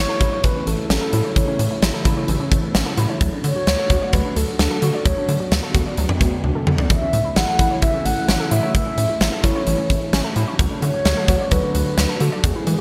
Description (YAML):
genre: synth-pop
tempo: 130 BPM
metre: 4/4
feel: straight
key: A major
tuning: A4 = 440 Hz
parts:
  - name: mellow horn-like synth lead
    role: melody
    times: 0.0-12.8 s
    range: G#4 to F#5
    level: -27 LUFS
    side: equal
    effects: chorus
  - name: phased analog pad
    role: sustained chords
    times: 0.1-12.8 s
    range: C#3 to F#4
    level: -29 LUFS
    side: equal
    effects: phaser, chorus
  - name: rubbery square bass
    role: bass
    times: 0.0-12.8 s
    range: A1 to E3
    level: -24 LUFS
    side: equal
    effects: none
  - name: warbly dusty pluck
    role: arpeggios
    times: 0.1-12.8 s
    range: E3 to D5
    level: -30 LUFS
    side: equal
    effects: chorus, digital delay
  - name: huge arena drum kit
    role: drums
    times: 0.2-12.8 s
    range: hi-hat, kick drum, snare drum, toms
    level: -23 LUFS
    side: equal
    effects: gated reverb
room: moderate lush hall reverb, RT60 2.1 s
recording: bright 1980s-style digital production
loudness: -19 LUFS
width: mono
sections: 0.0-12.8 A section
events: drum fill 6.4-6.9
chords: 0.0 A; 3.2 D; 6.9 A; 10.6 D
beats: 0.44 0.90 | 1.36 1.82 2.29 2.75 | 3.21 3.67 4.13 4.59 | 5.05 5.51 5.98 6.44 | 6.90 7.36 7.82 8.29 | 8.75 9.21 9.67 10.13 | 10.59 11.05 11.52 11.98 | 12.44